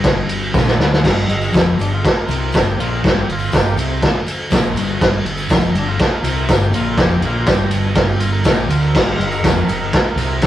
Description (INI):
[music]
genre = garage rock duo or trio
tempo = 122 BPM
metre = 4/4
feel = straight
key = G minor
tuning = A4 = 440 Hz
[part]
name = fuzz guitar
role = riff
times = 0.0-10.5 s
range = F2 to D3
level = -20 LUFS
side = left 1 dB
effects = distortion
[part]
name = growling fingered electric bass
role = bass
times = 0.0-10.5 s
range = F1 to D2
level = -22 LUFS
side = equal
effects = overdrive
[part]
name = raw garage drum kit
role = drums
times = 0.0-10.5 s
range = crash cymbal, kick drum, ride cymbal, snare drum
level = -15 LUFS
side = equal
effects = none
[part]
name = tambourine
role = percussion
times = 0.5-10.5 s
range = none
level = -37 LUFS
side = left 2 dB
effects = none
[part]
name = overdriven combo organ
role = melody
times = 1.8-10.4 s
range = Bb3 to Bb4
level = -26 LUFS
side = right 1 dB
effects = none
[sound]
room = moderate studio reverb, RT60 0.6 s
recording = rough rehearsal-room recording, cassette tape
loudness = -14 LUFS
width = side -13 dB against mid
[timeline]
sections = 0.0-1.0 A section; 1.0-10.5 B section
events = drum fill 0.5-1.0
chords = 0.0 Gm